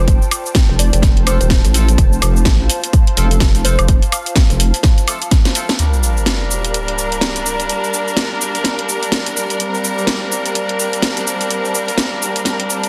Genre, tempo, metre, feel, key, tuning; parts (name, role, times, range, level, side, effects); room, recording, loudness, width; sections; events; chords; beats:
bass house; 126 BPM; 4/4; swing 59% on 16ths; G minor; A4 = 438 Hz
glassy wavetable pluck; melody; 0.0-4.5 s; A4 to F5; -29 LUFS; equal; chorus, tape echo
vowel-sweep wobble bass; bass; 0.0-4.7 s; Eb1 to A1; -16 LUFS; equal; chorus, overdrive, sidechain pumping
airy breathy pad; texture; 0.0-12.9 s; F4 to Bb5; -28 LUFS; equal; chorus, sidechain pumping
electronic kick drum; drums; 0.1-5.4 s; -14 LUFS; equal
house drum kit; drums; 0.1-12.9 s; hi-hat, shaker, snare drum, woodblock; -21 LUFS; equal
brilliant horn section; stabs; 1.3-12.9 s; F3 to Bb4; -26 LUFS; equal; sidechain pumping, tape echo
clear symphonic string section; sustained chords; 5.8-12.9 s; G3 to Bb4; -27 LUFS; equal; sidechain pumping
sub drop; sound effects; 5.8-7.7 s; -22 LUFS; equal
light reverb, digital ambience; dense, heavily limited modern master; -15 LUFS; mono
0.0-5.8 A section; 5.8-12.9 B section
drum fill 5.3-5.8; impact 5.8-7.7
0.0 F; 5.8 Gm
| 0.08 0.55 1.03 1.50 | 1.98 2.46 2.93 3.41 | 3.89 4.36 4.84 5.32 | 5.79 6.27 6.74 7.22 | 7.70 8.17 8.65 9.12 | 9.60 10.08 10.55 11.03 | 11.51 11.98 12.46